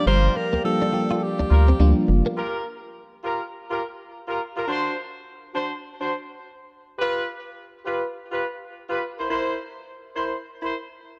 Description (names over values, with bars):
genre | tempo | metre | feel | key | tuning
R&B | 104 BPM | 4/4 | swing 61% on 16ths | G dorian | A4 = 440 Hz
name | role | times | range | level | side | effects
breathy alto saxophone | melody | 0.0-2.1 s | G4 to C5 | -28 LUFS | equal | digital delay
FM electric piano | accompaniment | 0.0-2.4 s | F3 to G4 | -27 LUFS | equal | chorus, phaser
mellow large flute ensemble | sustained chords | 0.0-2.3 s | G4 to G5 | -36 LUFS | equal | none
direct-recorded clean electric guitar | riff | 0.0-2.3 s | G3 to F4 | -32 LUFS | equal | ensemble chorus
mellow horn section | stabs | 0.1-10.7 s | D4 to C5 | -30 LUFS | equal | none
round analog bass | bass | 0.1-2.2 s | F#1 to D2 | -19 LUFS | equal | none
room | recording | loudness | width
light reverb, studio ambience | dark, warm production | -24 LUFS | mono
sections
0.0-2.4 A section; 2.4-11.2 B section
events
none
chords
0.0 Gm7; 4.7 D7; 6.7 G7; 9.0 C7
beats
| 0.07 0.64 1.22 1.80 | 2.37 2.95 3.53 4.10 | 4.68 5.26 5.83 6.41 | 6.99 7.57 8.14 8.72 | 9.30 9.87 10.45